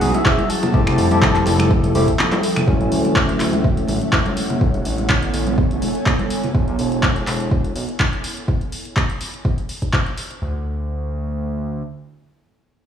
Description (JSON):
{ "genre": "deep house", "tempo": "124 BPM", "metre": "4/4", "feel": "swing 54% on 16ths", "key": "unclear", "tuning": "A4 = 440 Hz", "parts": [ { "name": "breathy flute-like synth lead", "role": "melody", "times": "0.0-2.2 s", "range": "E5 to A5", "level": "-25 LUFS", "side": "left 1 dB", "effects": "lush chorus, digital delay" }, { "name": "hollow soft pad", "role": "sustained chords", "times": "0.0-2.7 s", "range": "F3 to A4", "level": "-27 LUFS", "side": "equal", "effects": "ensemble chorus, sidechain pumping" }, { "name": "overdriven tine electric piano", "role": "stabs", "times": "0.0-4.6 s", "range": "E3 to G#4", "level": "-21 LUFS", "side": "left 1 dB", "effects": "sidechain pumping, tape echo" }, { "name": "smooth synth bass", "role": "bass", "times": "0.0-11.8 s", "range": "E1 to D2", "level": "-22 LUFS", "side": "equal", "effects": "sidechain pumping" }, { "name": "punchy analog drum machine", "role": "drums", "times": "0.0-10.4 s", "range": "finger snaps, handclaps, hi-hat", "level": "-23 LUFS", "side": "equal", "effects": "overdrive" }, { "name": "congas", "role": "percussion", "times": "0.0-6.5 s", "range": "none", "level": "-25 LUFS", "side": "right 1 dB", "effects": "none" }, { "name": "ethereal airy pad", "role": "texture", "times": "0.0-6.5 s", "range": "D3 to D#6", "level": "-26 LUFS", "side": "right 1 dB", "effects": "ensemble chorus, built-in reverb, sidechain pumping" }, { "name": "electronic kick drum", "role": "drums", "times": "0.3-10.0 s", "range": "none", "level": "-19 LUFS", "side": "equal", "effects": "overdrive" } ], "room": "moderate lush hall reverb, RT60 2.1 s", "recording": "played on a big sound system in a bare room, stone room reverb, studio ambience", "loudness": "-16 LUFS", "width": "side -8 dB against mid", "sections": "0.0-2.7 A section; 2.7-10.4 B section; 10.4-12.9 C section", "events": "drop 0.0-2.7; break 2.2-2.7", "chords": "0.0 Emaj9; 0.7 Fmaj9; 2.7 Dmaj9; 4.6 Amaj9; 6.3 E; 8.5 N.C." }